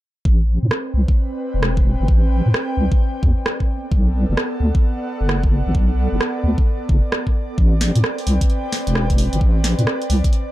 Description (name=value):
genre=UK garage, two-step garage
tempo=131 BPM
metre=4/4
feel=swing 64% on 16ths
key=A dorian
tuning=A4 = 445 Hz
part: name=deep soft wobble bass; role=bass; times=0.3-10.2 s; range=E1 to A2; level=-18 LUFS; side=equal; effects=chorus, tube saturation
part: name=electronic kick drum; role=drums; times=0.3-10.3 s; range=none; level=-16 LUFS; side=equal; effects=none
part: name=airy breathy pad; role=texture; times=0.3-10.5 s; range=B3 to G5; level=-26 LUFS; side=equal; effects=chorus, sidechain pumping
part: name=punchy analog drum machine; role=drums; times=0.7-10.4 s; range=hi-hat, rim click, snare drum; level=-23 LUFS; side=right 1 dB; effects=none
room=little or no reverb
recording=dark, warm production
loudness=-16 LUFS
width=side -15 dB against mid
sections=0.3-10.5 A section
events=none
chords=0.3 Am11; 3.7 Bm7; 7.6 Am11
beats=| 0.25 0.71 1.17 1.63 | 2.08 2.54 3.00 3.46 | 3.92 4.37 4.83 5.29 | 5.75 6.21 6.66 7.12 | 7.58 8.04 8.50 8.95 | 9.41 9.87 10.33